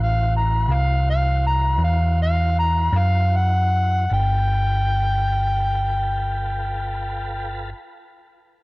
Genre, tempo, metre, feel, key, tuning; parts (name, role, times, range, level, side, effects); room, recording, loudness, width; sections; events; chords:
slow blues; 50-56 BPM (dotted quarters); 12/8; straight; A4 = 441 Hz
overdriven harmonica; melody; 0.0-7.7 s; F5 to Bb5; -23 LUFS; equal
tonewheel organ; sustained chords; 0.0-7.7 s; E3 to C5; -36 LUFS; equal; slow rotary speaker, chorus vibrato
picked electric bass; bass; 0.0-7.7 s; G1 to F#2; -20 LUFS; equal
small room ambience; rough home demo mix; -18 LUFS; side -22 dB against mid
0.0-4.1 A section; 4.1-8.6 B section
slowing down 0.0-4.1; harmonica solo 0.0-4.1
0.0 Am6; 4.1 G9